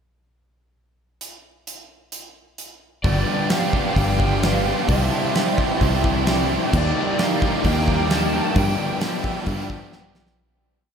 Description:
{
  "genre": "rock, shoegaze and dream pop",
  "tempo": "131 BPM",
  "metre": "4/4",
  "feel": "straight",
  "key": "G mixolydian",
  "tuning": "A4 = 440 Hz",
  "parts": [
    { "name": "huge arena drum kit", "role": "drums", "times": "1.2-10.4 s", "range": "crash cymbal, hi-hat, kick drum, snare drum", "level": "-24 LUFS", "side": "equal", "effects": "none" },
    { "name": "lead guitar through a small cranked amp", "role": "melody", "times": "3.0-9.0 s", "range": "D5 to A5", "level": "-29 LUFS", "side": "right 1 dB", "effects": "overdrive, analog chorus, analog delay" },
    { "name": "evolving wavetable pad", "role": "sustained chords", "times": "3.8-10.4 s", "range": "Eb4 to C6", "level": "-30 LUFS", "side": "right 1 dB", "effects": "ensemble chorus, built-in reverb" },
    { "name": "biting overdriven guitar", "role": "riff", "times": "3.0-10.4 s", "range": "G2 to G4", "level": "-25 LUFS", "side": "right 7 dB", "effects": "reverse reverb" },
    { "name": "overdriven semi-hollow guitar", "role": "riff", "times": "3.0-10.4 s", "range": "G2 to G4", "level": "-25 LUFS", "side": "left 6 dB", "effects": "lush chorus" },
    { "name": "fingered electric bass", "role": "bass", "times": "3.0-10.2 s", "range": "G1 to G2", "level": "-22 LUFS", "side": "equal", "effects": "none" }
  ],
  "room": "wet huge ambient reverb, RT60 9.0 s",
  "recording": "dreamy mix soaked in reverb, faint mains hum",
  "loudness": "-18 LUFS",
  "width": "side -7 dB against mid",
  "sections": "1.2-3.0 pickup bar; 3.0-10.4 A section",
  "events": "fade-out 8.6-10.4; drum fill 9.9-10.4",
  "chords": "1.2 N.C.; 3.0 G9sus4; 4.9 C69; 6.7 Ebmaj7; 8.6 G13"
}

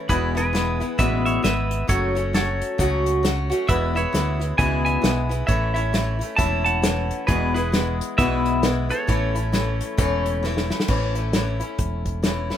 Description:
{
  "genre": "honky-tonk and classic country",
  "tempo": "134 BPM",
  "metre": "4/4",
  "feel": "swing 60% on 8ths",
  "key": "A major",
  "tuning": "A4 = 440 Hz",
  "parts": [
    { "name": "picked acoustic archtop guitar", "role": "accompaniment", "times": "0.0-12.6 s", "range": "E2 to F#4", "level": "-24 LUFS", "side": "left 2 dB", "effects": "plate reverb" },
    { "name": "clean electric guitar", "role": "melody", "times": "0.1-10.4 s", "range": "G#4 to A5", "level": "-26 LUFS", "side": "right 2 dB", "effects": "none" },
    { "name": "fingered electric bass", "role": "bass", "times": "0.1-12.5 s", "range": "E1 to D2", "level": "-25 LUFS", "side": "equal", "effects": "none" },
    { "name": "unplugged drum kit", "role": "drums", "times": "0.1-12.6 s", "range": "crash cymbal, hi-hat, kick drum, snare drum", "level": "-24 LUFS", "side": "equal", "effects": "none" }
  ],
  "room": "light reverb",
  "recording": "rough home demo mix",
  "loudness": "-19 LUFS",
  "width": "side -10 dB against mid",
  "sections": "0.0-10.9 A section; 10.9-12.6 B section",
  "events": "drum fill 10.4-10.9",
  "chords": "0.1 E; 1.9 F#m; 3.7 E; 5.5 A; 7.3 E; 9.1 A"
}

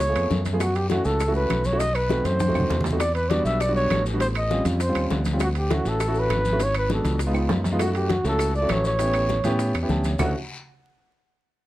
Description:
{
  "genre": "Afro-Cuban jazz",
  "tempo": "200 BPM",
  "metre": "4/4",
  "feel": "straight",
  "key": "D major",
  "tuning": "A4 = 441 Hz",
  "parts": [
    { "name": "breathy trumpet", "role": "melody", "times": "0.0-10.3 s", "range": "F#4 to F#5", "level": "-25 LUFS", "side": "equal", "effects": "plate reverb" },
    { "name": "fingered electric bass", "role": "bass", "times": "0.0-10.3 s", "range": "G#1 to A2", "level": "-25 LUFS", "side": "equal", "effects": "none" },
    { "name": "bongos", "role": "percussion", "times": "0.0-10.3 s", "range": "none", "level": "-32 LUFS", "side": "left 7 dB", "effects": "none" },
    { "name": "congas", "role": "percussion", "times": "0.0-10.3 s", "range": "none", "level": "-31 LUFS", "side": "left 1 dB", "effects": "none" },
    { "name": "guiro", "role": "percussion", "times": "0.0-10.3 s", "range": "none", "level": "-40 LUFS", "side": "left 5 dB", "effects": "none" },
    { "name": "maracas", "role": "percussion", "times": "0.0-10.3 s", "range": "none", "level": "-42 LUFS", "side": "left 2 dB", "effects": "none" },
    { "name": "timbales", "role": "percussion", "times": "0.0-10.3 s", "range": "none", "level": "-34 LUFS", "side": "right 7 dB", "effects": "none" },
    { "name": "warm grand piano", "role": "accompaniment", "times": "0.1-10.3 s", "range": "G3 to A5", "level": "-27 LUFS", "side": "right 1 dB", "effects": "none" },
    { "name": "claves", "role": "percussion", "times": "0.2-10.3 s", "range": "none", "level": "-36 LUFS", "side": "right 1 dB", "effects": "none" }
  ],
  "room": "light reverb",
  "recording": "close, detailed microphones, vinyl crackle",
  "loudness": "-20 LUFS",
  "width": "side -15 dB against mid",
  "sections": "0.0-7.8 A section; 7.8-10.2 B section; 10.2-11.4 C section",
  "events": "drum fill 2.4-3.0, 7.3-7.8; grand piano fill 9.7-10.2",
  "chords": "0.0 C#7b13; 0.6 F#m7; 1.8 B7b9; 3.0 Em9; 4.2 A7alt; 5.4 Dmaj7; 6.6 G#m7b5; 7.2 C#7; 7.8 F#m7; 9.0 A9; 10.2 Dmaj7"
}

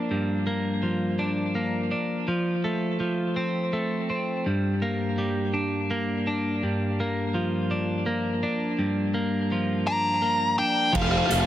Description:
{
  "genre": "post-rock",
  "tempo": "55 BPM (dotted quarters)",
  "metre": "6/8",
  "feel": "straight",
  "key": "G minor",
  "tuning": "A4 = 440 Hz",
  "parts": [
    { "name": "twelve-string electric guitar", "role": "arpeggios", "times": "0.0-11.5 s", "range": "G2 to D4", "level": "-25 LUFS", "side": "equal", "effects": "digital delay" },
    { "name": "nasal lead guitar with a parked wah", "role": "melody", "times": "9.9-11.5 s", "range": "F5 to Bb5", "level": "-23 LUFS", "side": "left 2 dB", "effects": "overdrive, digital delay" },
    { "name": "twelve-string electric guitar", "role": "arpeggios", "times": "10.9-11.5 s", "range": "G4 to A4", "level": "-34 LUFS", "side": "right 3 dB", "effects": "none" },
    { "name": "oversized low-tuned drum kit", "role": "drums", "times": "10.9-11.5 s", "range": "crash cymbal, hi-hat, kick drum", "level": "-25 LUFS", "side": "right 2 dB", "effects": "none" },
    { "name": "pedal steel guitar", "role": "sustained chords", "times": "11.0-11.5 s", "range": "F3 to A4", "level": "-36 LUFS", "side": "right 1 dB", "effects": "none" },
    { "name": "fuzz fingered electric bass", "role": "bass", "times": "11.0-11.5 s", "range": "F1", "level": "-26 LUFS", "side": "right 1 dB", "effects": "overdrive" }
  ],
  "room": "moderate huge ambient reverb, RT60 4.8 s",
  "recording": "none",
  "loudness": "-24 LUFS",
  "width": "side -12 dB against mid",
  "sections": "0.0-11.0 A section",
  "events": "none",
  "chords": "0.0 Gm7; 2.3 F; 4.5 Gm; 6.6 Gm7; 11.0 Fadd9"
}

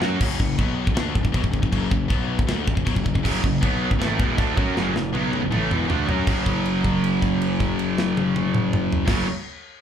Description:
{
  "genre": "heavy metal",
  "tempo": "158 BPM",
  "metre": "4/4",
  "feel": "straight",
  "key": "F# minor",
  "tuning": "A4 = 439 Hz",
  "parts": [
    { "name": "distorted electric guitar", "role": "riff", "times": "0.0-0.2, 3.2-9.3 s", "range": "E2 to F#4", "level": "-25 LUFS", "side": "right 11 dB", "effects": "overdrive, slapback echo" },
    { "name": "high-gain distorted guitar", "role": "riff", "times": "0.0-9.3 s", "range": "E2 to F#4", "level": "-26 LUFS", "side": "left 11 dB", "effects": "distortion" },
    { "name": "fuzz picked electric bass", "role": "bass", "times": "0.0-9.2 s", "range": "E1 to F#2", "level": "-27 LUFS", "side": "equal", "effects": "overdrive" },
    { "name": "tight metal drum kit", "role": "drums", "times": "0.0-9.2 s", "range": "china cymbal, crash cymbal, kick drum, snare drum, toms", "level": "-24 LUFS", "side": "equal", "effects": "none" }
  ],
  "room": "little or no reverb",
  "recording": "live gig heard through the venue's PA, club reverb",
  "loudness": "-20 LUFS",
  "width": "side -9 dB against mid",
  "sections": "0.2-6.3 A section; 6.3-9.3 B section",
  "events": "drum fill 0.0, 4.8-6.3; held note 6.3-9.1",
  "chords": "0.2 F#m; 6.3 F#5"
}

